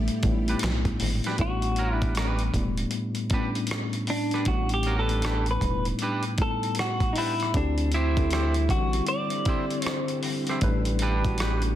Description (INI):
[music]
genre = R&B, neo-soul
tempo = 78 BPM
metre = 4/4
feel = swing 64% on 16ths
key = A dorian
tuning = A4 = 442 Hz
[part]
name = clean electric guitar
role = melody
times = 0.0-10.2 s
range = A3 to D5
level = -29 LUFS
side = equal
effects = lush chorus, slapback echo
[part]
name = tine electric piano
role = accompaniment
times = 0.0-11.8 s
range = A2 to B4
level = -30 LUFS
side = left 2 dB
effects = medium stereo tremolo
[part]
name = string machine, full ensemble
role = sustained chords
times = 0.0-1.4, 7.5-11.8 s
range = D3 to G4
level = -36 LUFS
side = equal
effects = ensemble chorus
[part]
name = rubbery square bass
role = bass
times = 0.0-11.7 s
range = E1 to D2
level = -27 LUFS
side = equal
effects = none
[part]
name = dusty soul sampler-style drum kit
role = drums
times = 0.1-11.8 s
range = handclaps, hi-hat, kick drum, rim click, snare drum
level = -29 LUFS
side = equal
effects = soft clipping on snare
[part]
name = semi-hollow electric guitar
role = second line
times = 0.5-11.6 s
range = D4 to C5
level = -33 LUFS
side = right 3 dB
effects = slapback echo
[sound]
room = light reverb, digital ambience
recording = dense, heavily limited modern master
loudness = -23 LUFS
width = side -12 dB against mid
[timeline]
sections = 0.0-1.4 A section; 1.4-11.8 B section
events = clean electric guitar solo 1.4-11.8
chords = 0.0 A9sus4; 7.5 D9sus4; 10.6 A9sus4